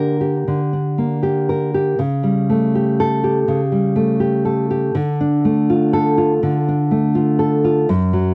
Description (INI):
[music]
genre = romantic piece for solo classical guitar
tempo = 81 BPM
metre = 4/4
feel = rubato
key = D minor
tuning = A4 = 440 Hz
[part]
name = nylon-string guitar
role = solo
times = 0.0-8.3 s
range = F#2 to Bb4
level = -17 LUFS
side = equal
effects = none
[sound]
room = light reverb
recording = dry, close 1970s-style studio recording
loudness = -17 LUFS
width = mono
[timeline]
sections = 0.0-8.3 A section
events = none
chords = 0.0 Gm/D; 2.0 A7/C#; 4.9 Dm